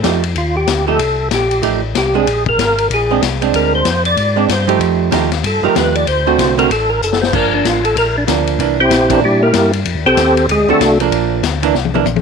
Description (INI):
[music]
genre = soul jazz organ trio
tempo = 190 BPM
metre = 4/4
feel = swing 62% on 8ths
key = F mixolydian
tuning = A4 = 437 Hz
[part]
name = archtop guitar, miked and amplified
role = accompaniment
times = 0.0-12.1 s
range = D3 to G4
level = -17 LUFS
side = right 16 dB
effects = none
[part]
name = mellow tonewheel organ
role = bass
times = 0.0-12.2 s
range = F#1 to Bb2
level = -20 LUFS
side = left 1 dB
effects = chorus vibrato, slow rotary speaker
[part]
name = vintage drum kit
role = drums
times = 0.0-12.2 s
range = crash cymbal, hi-hat, kick drum, ride cymbal, snare drum, toms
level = -19 LUFS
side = left 12 dB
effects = none
[part]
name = percussive tonewheel organ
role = melody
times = 0.4-11.0 s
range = G3 to D5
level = -14 LUFS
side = equal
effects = slow rotary speaker, chorus vibrato, slapback echo
[sound]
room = light reverb, small room reverb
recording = 1960s-style stereo with parts hard left and right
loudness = -12 LUFS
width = side -5 dB against mid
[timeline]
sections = 0.0-12.2 A section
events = tonewheel organ solo 0.0-12.2; drum fill 7.0-7.3, 11.7-12.2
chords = 0.0 F9; 2.3 Bb9; 4.8 F9; 6.1 D7; 7.3 Gm7; 8.6 C9; 9.9 F9; 10.5 D7; 11.1 Bb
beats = 0.04 0.36 0.68 | 0.99 1.31 1.63 1.95 | 2.26 2.58 2.90 3.22 | 3.53 3.85 4.17 4.49 | 4.80 5.12 5.43 5.75 | 6.07 6.38 6.70 7.02 | 7.33 7.65 7.96 8.28 | 8.59 8.91 9.22 9.54 | 9.86 10.17 10.48 10.80 | 11.12 11.43 11.74 12.06